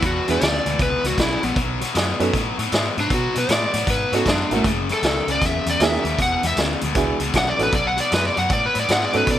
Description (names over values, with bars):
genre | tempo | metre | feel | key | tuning
electric blues shuffle | 156 BPM | 4/4 | swing 64% on 8ths | unclear | A4 = 440 Hz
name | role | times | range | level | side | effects
overdriven slide guitar | melody | 0.0-9.4 s | A3 to F#5 | -22 LUFS | equal | none
overdriven electric guitar | riff | 0.0-9.4 s | E2 to G#3 | -24 LUFS | left 4 dB | none
vintage muted fingered electric bass | bass | 0.0-9.4 s | E1 to B2 | -27 LUFS | equal | none
vintage drum kit | drums | 0.0-9.4 s | hi-hat, kick drum, snare drum | -23 LUFS | equal | none
clear upright piano | accompaniment | 0.3-9.4 s | A#3 to A#4 | -23 LUFS | right 4 dB | none
room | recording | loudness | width
light reverb | none | -18 LUFS | side -11 dB against mid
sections
0.0-9.4 A section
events
electric slide guitar solo 0.0-9.4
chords
0.0 E7(no3); 1.6 B7(no3); 4.6 F#7; 6.2 E7; 7.7 B7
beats
| 0.03 0.41 0.80 1.18 | 1.57 1.95 2.34 2.72 | 3.11 3.49 3.88 4.26 | 4.64 5.03 5.42 5.80 | 6.19 6.57 6.96 7.34 | 7.73 8.11 8.50 8.89 | 9.27